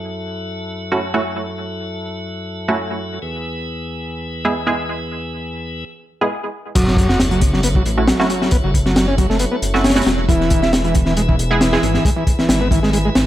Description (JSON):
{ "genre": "breakbeat, breaks", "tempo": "136 BPM", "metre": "4/4", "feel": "swing 53% on 16ths", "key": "F# minor", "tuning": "A4 = 440 Hz", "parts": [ { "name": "tonewheel organ", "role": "sustained chords", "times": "0.0-13.3 s", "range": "E2 to B4", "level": "-26 LUFS", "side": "equal", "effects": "slow rotary speaker, sidechain pumping, low-pass filter" }, { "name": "filtered dub chord stab", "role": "stabs", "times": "0.9-11.8 s", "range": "G#3 to G#4", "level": "-20 LUFS", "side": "right 2 dB", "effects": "chorus, cassette tape, analog delay" }, { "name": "overdriven combo organ", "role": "riff", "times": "6.8-13.1 s", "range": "E3 to F#4", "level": "-19 LUFS", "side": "equal", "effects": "vintage 12-bit sampler grit, analog delay" }, { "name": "dark detuned saw bass", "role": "bass", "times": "6.8-13.3 s", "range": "E1 to A1", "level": "-20 LUFS", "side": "equal", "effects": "none" }, { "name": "crunchy breakbeat drum kit", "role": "drums", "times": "6.8-13.3 s", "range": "crash cymbal, hi-hat, kick drum, snare drum", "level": "-17 LUFS", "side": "equal", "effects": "analog delay" }, { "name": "sub drop", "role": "sound effects", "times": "6.8-8.5 s", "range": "none", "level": "-26 LUFS", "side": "equal", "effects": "none" } ], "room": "light reverb, small room ambience", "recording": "echo-heavy mix", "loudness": "-16 LUFS", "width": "side -13 dB against mid", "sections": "0.0-6.8 A section; 6.8-13.3 B section", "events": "drop 6.8-13.3; impact 6.8-8.5", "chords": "0.0 F#m7; 3.2 E; 6.8 F#m7; 10.3 E", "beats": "0.14 0.58 1.02 | 1.46 1.90 2.34 2.79 | 3.23 3.67 4.11 4.55 | 4.99 5.43 5.87 6.32 | 6.76 7.20 7.64 8.08 | 8.52 8.96 9.40 9.84 | 10.29 10.73 11.17 11.61 | 12.05 12.49 12.93" }